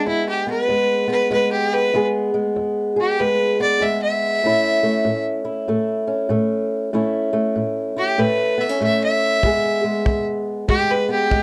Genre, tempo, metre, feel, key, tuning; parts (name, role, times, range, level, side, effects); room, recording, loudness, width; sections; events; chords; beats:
acoustic country blues, solo or duo; 96 BPM; 4/4; swing 63% on 8ths; E major; A4 = 440 Hz
rich fiddle; melody; 0.0-11.4 s; E4 to E5; -22 LUFS; equal
fingerpicked old ladder-braced acoustic guitar; accompaniment; 0.0-11.4 s; E2 to G#4; -23 LUFS; equal
kick drum; drums; 9.4-11.4 s; -23 LUFS; equal
moderate booth ambience, RT60 0.2 s; dark, warm production; -20 LUFS; mono
0.0-11.4 A section
0.0 E; 4.4 A; 9.4 E
0.06 0.69 1.31 | 1.94 2.56 3.19 3.81 | 4.43 5.06 5.69 6.31 | 6.94 7.56 8.19 8.81 | 9.44 10.06 10.69 11.32